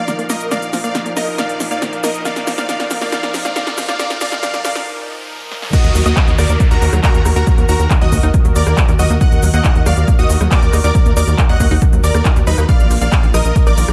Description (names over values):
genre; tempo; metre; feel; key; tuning
uplifting trance; 138 BPM; 4/4; straight; Eb harmonic minor; A4 = 440 Hz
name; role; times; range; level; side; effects
supersaw stab; melody; 0.0-13.9 s; Eb4 to Gb5; -23 LUFS; equal; vintage 12-bit sampler grit, sidechain pumping, tape echo
lush unison pad; sustained chords; 0.0-13.9 s; Bb2 to Bb4; -28 LUFS; equal; chorus, sidechain pumping
riser and downlifter; sound effects; 1.1-9.2 s; none; -31 LUFS; equal; none
tight sequenced synth; arpeggios; 0.1-13.9 s; Eb3 to Eb4; -29 LUFS; equal; chorus, sidechain pumping, tape echo
big-room dance drum kit; drums; 0.1-13.9 s; crash cymbal, handclaps, hi-hat, ride cymbal, rim click, shaker, snare drum; -25 LUFS; equal; overdrive, sidechain pumping on hats, small room ambience, sidechain pumping on perc, sidechain pumping on cymbals
supersaw stab; second line; 5.7-13.9 s; Bb5 to Gb6; -28 LUFS; equal; sidechain pumping, tape echo
electronic kick drum; drums; 5.7-13.6 s; none; -15 LUFS; equal; small room ambience
tight sequencer bass; bass; 5.8-13.9 s; Bb1 to Eb2; -17 LUFS; equal; sidechain pumping
room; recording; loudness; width
light reverb, digital ambience; dark, warm production, high-pass filter; -14 LUFS; mono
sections
0.0-5.7 A section; 5.7-13.9 B section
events
build-up 0.0-5.7; drum fill 0.0-4.9, 5.5; filter sweep 0.0-5.7; riser 1.1-5.7; break 4.9-5.7; drop 5.7-13.9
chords
0.0 Bbsus4; 5.7 Ebm; 12.7 Bbsus4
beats
0.08 | 0.52 0.95 1.39 1.82 | 2.25 2.69 3.12 3.56 | 3.99 4.43 4.86 5.30 | 5.73 6.17 6.60 7.04 | 7.47 7.91 8.34 8.78 | 9.21 9.65 10.08 10.52 | 10.95 11.38 11.82 12.26 | 12.69 13.12 13.56